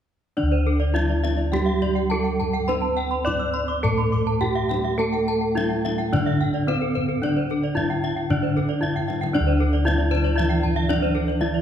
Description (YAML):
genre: Balinese gamelan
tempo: 104-116 BPM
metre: 4/4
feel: straight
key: D slendro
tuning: A4 = 440 Hz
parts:
  - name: gamelan-type bronze metallophone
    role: melody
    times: 0.4-11.6 s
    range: C4-45c to D5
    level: -26 LUFS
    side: right 1 dB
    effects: none
  - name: gamelan-type bronze metallophone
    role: accompaniment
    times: 0.4-11.6 s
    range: D3 to C4-45c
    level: -29 LUFS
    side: right 2 dB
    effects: none
  - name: gamelan-type bronze metallophone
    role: arpeggios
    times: 0.4-11.5 s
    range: A4+25c to D6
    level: -30 LUFS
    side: left 5 dB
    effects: none
  - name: gamelan-type bossed gongs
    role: bass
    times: 0.4-11.6 s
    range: D2 to C5-45c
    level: -24 LUFS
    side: equal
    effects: none
  - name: gamelan-type bronze metallophone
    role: arpeggios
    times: 0.5-11.6 s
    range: A4+25c to E6+30c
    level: -31 LUFS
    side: right 6 dB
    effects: none
  - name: kendang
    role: percussion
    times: 1.0-11.4 s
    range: none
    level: -31 LUFS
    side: left 4 dB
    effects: none
  - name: breathy mellow alto ocarina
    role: second line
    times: 10.2-11.6 s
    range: C5-48c to E5+32c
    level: -34 LUFS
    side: right 7 dB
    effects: none
room: moderate concert hall reverb, RT60 2.4 s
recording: none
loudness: -20 LUFS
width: side -9 dB against mid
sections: 0.4-9.4 A section; 9.4-11.6 B section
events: drum fill 9.0-9.4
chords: none